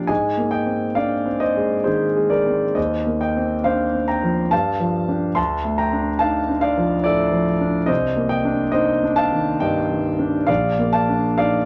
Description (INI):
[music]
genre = classical, impressionist solo piano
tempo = 66-73 BPM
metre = 3/4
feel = rubato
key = unclear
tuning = A4 = 439 Hz
[part]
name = warm concert grand piano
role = solo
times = 0.0-11.7 s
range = Bb1 to C6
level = -20 LUFS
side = equal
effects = none
[sound]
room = moderate studio reverb, RT60 0.5 s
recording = nothing above 10.3 kHz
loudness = -20 LUFS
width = mono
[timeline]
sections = 0.0-11.7 A section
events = none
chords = 0.1 Abadd9; 2.8 Eb69; 4.5 Gsus2; 5.4 Dm; 7.9 Cm11; 10.5 Bbmaj7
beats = | 0.10 0.97 1.86 | 2.77 3.66 4.52 | 5.38 6.21 7.06 | 7.90 8.74 9.61 | 10.49 11.38